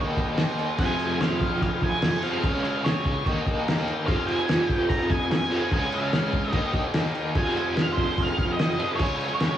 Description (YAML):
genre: garage rock duo or trio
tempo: 146 BPM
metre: 4/4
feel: straight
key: F minor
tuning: A4 = 440 Hz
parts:
  - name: combo organ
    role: sustained chords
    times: 0.0-9.6 s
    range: F4 to Ab5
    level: -36 LUFS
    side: equal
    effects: cassette tape
  - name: biting overdriven guitar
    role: riff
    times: 0.0-9.6 s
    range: F2 to Eb4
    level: -26 LUFS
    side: right 1 dB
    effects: tremolo, cassette tape
  - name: cloth-damped thuddy drum kit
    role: drums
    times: 0.2-9.5 s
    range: crash cymbal, kick drum, snare drum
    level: -26 LUFS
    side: equal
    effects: cassette tape
  - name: octave-fuzz lead guitar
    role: melody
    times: 0.8-9.6 s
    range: C5 to Bb5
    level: -30 LUFS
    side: equal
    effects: distortion, cassette tape
room: light reverb, small room ambience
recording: home recording on cassette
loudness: -22 LUFS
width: side -11 dB against mid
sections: 0.0-9.6 A section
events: none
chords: 0.0 Eb; 0.8 Fm; 2.4 Db; 3.3 Eb; 4.1 Fm; 5.7 Db; 6.5 Eb; 7.4 Fm; 9.0 Db